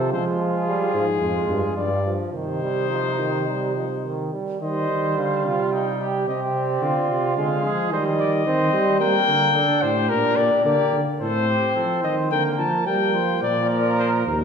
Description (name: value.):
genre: classical, imitative canzona for brass ensemble.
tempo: 108 BPM.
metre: 4/4.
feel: straight.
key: C minor.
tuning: A4 = 440 Hz.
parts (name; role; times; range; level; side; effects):
warm cornet; melody; 0.0-14.4 s; Ab4 to A5; -24 LUFS; left 5 dB; none.
mellow trumpet; second line; 0.0-14.4 s; Eb4 to D5; -27 LUFS; right 3 dB; none.
bright trombone; accompaniment; 0.0-14.4 s; Eb3 to D4; -25 LUFS; right 3 dB; none.
mellow bass trombone; bass; 0.0-14.4 s; Eb2 to G3; -25 LUFS; right 1 dB; none.
room: wet recital hall reverb, RT60 1.4 s.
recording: recorded in a church or concert hall.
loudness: -19 LUFS.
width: side -6 dB against mid.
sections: 0.0-4.6 A section; 4.6-13.4 B section; 13.4-14.4 C section.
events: none.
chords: 0.1 Fm; 1.2 Fmadd9; 1.8 G5; 2.3 Cm; 4.6 Cm/Eb; 5.7 Cm; 6.8 Ddim; 7.9 Cm/Eb; 9.0 Gm; 10.1 Gm/Bb; 11.2 Adim; 12.3 Gm/D; 13.4 Bb.